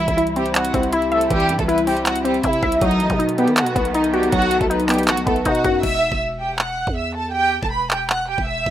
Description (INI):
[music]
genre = hip hop, trap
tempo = 159 BPM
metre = 4/4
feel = half-time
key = E harmonic minor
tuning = A4 = 440 Hz
[part]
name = warm studio violin section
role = melody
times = 0.0-8.7 s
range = G3 to F#6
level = -22 LUFS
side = right 2 dB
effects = none
[part]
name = warbly dusty pluck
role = accompaniment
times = 0.0-5.8 s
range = E3 to E5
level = -19 LUFS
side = left 2 dB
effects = chorus
[part]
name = dark symphonic string section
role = sustained chords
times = 0.0-5.8 s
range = C3 to E4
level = -30 LUFS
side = right 1 dB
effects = none
[part]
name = growling 808-style bass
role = bass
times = 0.0-8.7 s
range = E1 to D#3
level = -27 LUFS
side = right 1 dB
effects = none
[part]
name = trap drum kit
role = drums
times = 0.1-8.7 s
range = crash cymbal, handclaps, hi-hat, kick drum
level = -23 LUFS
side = right 1 dB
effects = none
[sound]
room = light reverb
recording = rough home demo mix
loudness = -17 LUFS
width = side -11 dB against mid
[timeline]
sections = 0.0-5.8 A section; 5.8-8.7 B section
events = break 5.8-8.7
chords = 0.0 C; 2.8 B7; 5.8 Emadd9